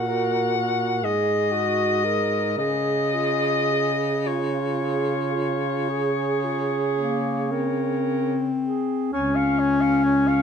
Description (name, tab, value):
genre	classical, lyrical piece for single-reed quartet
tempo	35-44 BPM (dotted quarters)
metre	12/8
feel	rubato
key	Db major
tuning	A4 = 440 Hz
part	warm soprano saxophone	melody	0.0-10.4 s	Db5 to Db6	-26 LUFS	left 6 dB	none
part	clear alto saxophone	second line	0.0-10.4 s	F4 to F5	-28 LUFS	right 9 dB	none
part	warm clarinet	accompaniment	0.0-10.4 s	Bb3 to Bb4	-25 LUFS	left 3 dB	none
part	clear baritone saxophone	bass	0.0-10.4 s	Db2 to Db3	-27 LUFS	right 3 dB	none
room	moderate recital hall reverb, RT60 1.6 s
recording	close, detailed microphones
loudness	-21 LUFS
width	side -7 dB against mid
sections	0.0-9.1 A section; 9.1-10.4 A section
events	none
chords	0.0 Gb/Bb; 1.0 Ab5; 2.6 Db